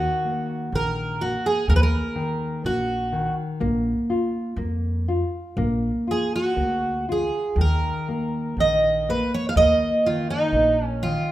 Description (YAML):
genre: fado-style ballad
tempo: 61 BPM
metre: 2/4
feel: rubato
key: Eb minor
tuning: A4 = 440 Hz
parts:
  - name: fingerpicked twelve-string acoustic guitar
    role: melody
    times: 0.0-11.3 s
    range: Eb4 to F5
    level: -22 LUFS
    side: right 2 dB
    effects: none
  - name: nylon-string guitar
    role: accompaniment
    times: 0.0-11.3 s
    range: Eb3 to F4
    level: -26 LUFS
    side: left 1 dB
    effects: none
  - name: upright bass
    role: bass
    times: 0.0-11.2 s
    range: Bb1 to F2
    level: -25 LUFS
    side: equal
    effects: none
room: moderate recital hall reverb, RT60 1.4 s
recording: minimal, uncompressed stereo recording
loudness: -20 LUFS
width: side -14 dB against mid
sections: 0.0-11.3 A section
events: none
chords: 0.0 Ebm; 3.6 Bb5; 5.6 Bb; 7.6 Eb5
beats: 0.72 | 1.69 2.65 | 3.61 4.58 | 5.58 6.58 | 7.57 8.57 | 9.56 10.54